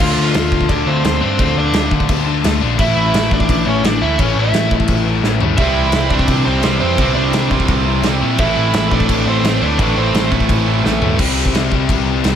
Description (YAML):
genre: punk rock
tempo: 172 BPM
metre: 4/4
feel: straight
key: D minor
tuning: A4 = 442 Hz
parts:
  - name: crunchy overdriven guitar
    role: melody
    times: 0.0-10.3 s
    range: C4 to F5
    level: -20 LUFS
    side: right 2 dB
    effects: digital delay
  - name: distorted electric guitar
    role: riff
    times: 0.0-12.4 s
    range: A2 to D4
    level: -21 LUFS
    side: left 11 dB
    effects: distortion
  - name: distorted electric guitar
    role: riff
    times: 0.0-12.4 s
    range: A2 to F4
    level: -22 LUFS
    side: left 1 dB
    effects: distortion
  - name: overdriven picked electric bass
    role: bass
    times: 0.0-12.4 s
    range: A1 to Bb2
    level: -19 LUFS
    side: equal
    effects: none
  - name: loose indie drum kit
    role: drums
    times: 0.0-12.3 s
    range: crash cymbal, kick drum, snare drum, toms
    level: -18 LUFS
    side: equal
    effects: none
  - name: distorted electric guitar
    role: riff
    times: 5.6-11.2 s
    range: A2 to C4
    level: -20 LUFS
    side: right 10 dB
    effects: overdrive
room: light reverb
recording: none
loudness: -13 LUFS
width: side -9 dB against mid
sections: 0.0-11.2 A section; 11.2-12.4 B section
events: drum fill 5.2-5.6, 10.8-11.2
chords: 0.0 Dm; 2.8 A; 5.6 C; 8.4 Am; 11.2 C